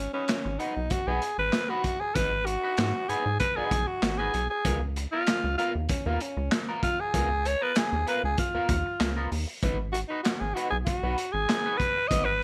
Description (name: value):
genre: funk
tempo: 96 BPM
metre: 4/4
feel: straight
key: G# dorian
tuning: A4 = 441 Hz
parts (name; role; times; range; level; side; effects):
- growling alto saxophone; melody; 0.0-12.4 s; C#4 to D#5; -31 LUFS; equal; none
- rubbery square bass; bass; 0.0-12.4 s; G#1 to G#2; -33 LUFS; equal; none
- electric guitar at the edge of break-up; accompaniment; 0.1-12.3 s; B3 to B4; -37 LUFS; equal; wah
- crunchy breakbeat drum kit; drums; 0.3-12.3 s; handclaps, hi-hat, kick drum, snare drum; -32 LUFS; equal; none
room: light reverb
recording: none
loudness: -28 LUFS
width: mono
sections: 0.0-12.4 A section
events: alto saxophone solo 0.0-12.4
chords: 0.0 G#m7; 4.6 C#13; 9.6 G#m7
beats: 0.29 0.91 1.53 | 2.16 2.78 3.40 4.03 | 4.65 5.27 5.89 6.52 | 7.14 7.76 8.38 9.00 | 9.62 10.24 10.87 11.48 | 12.11